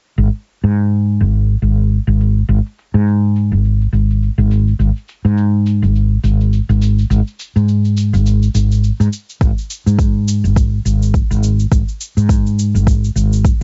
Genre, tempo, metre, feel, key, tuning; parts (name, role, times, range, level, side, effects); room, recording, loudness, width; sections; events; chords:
organic downtempo; 104 BPM; 4/4; swing 57% on 16ths; A4 = 437 Hz
woody fretless electric bass; bass; 0.2-13.6 s; G#1 to G#2; -15 LUFS; equal; tube saturation, subtle chorus, sidechain pumping
shaker; drums; 0.2-13.6 s; -33 LUFS; equal; low-pass filter on perc, low-pass filter on room
electronic kick drum; drums; 9.4-13.6 s; -16 LUFS; equal; overdrive
little or no reverb; nothing above 7.8 kHz; -15 LUFS; mono
0.2-13.6 A section